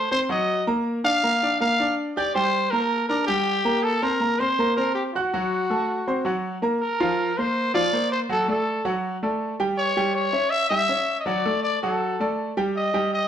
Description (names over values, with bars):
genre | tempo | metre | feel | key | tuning
latin | 161 BPM | 4/4 | straight | G minor | A4 = 441 Hz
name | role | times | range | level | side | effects
growling trumpet | melody | 0.0-13.3 s | F#4 to F5 | -23 LUFS | left 1 dB | slapback echo
clear grand piano | accompaniment | 0.0-13.2 s | F3 to G6 | -24 LUFS | right 1 dB | none
room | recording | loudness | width
moderate studio reverb, RT60 0.7 s | none | -21 LUFS | side -9 dB against mid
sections
0.0-6.8 A section; 6.8-13.3 B section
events
none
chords
0.0 F#dim7(no3); 0.9 Gm7; 2.4 Gmadd11; 3.8 Bbsus2; 5.3 F#dim; 6.8 Fsus4; 8.3 D; 9.8 Eb7b9/G (rootless); 11.3 D; 12.8 Eb